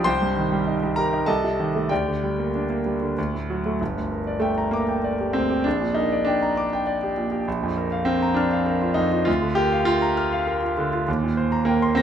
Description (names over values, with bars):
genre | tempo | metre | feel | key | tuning
classical, virtuoso piano study | 99 BPM | 3/4 | rubato | G minor | A4 = 440 Hz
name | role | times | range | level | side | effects
clear concert grand piano | solo | 0.0-12.0 s | G1 to Bb6 | -20 LUFS | equal | none
room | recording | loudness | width
wet stone room reverb, RT60 1.1 s | none | -20 LUFS | side -9 dB against mid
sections
0.0-3.8 A section; 3.8-12.0 B section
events
none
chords
0.1 Cm; 1.3 Adim/C; 1.9 Gm/D; 3.2 D; 3.8 Gm; 5.7 Gm/Bb; 7.5 Bb; 9.3 Bb/D; 11.1 Cm7/Eb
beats
| 0.06 0.67 1.28 | 1.90 2.54 3.17 | 3.80 4.42 5.04 | 5.65 6.26 6.86 | 7.47 8.07 8.67 | 9.27 9.88 10.48 | 11.08 11.67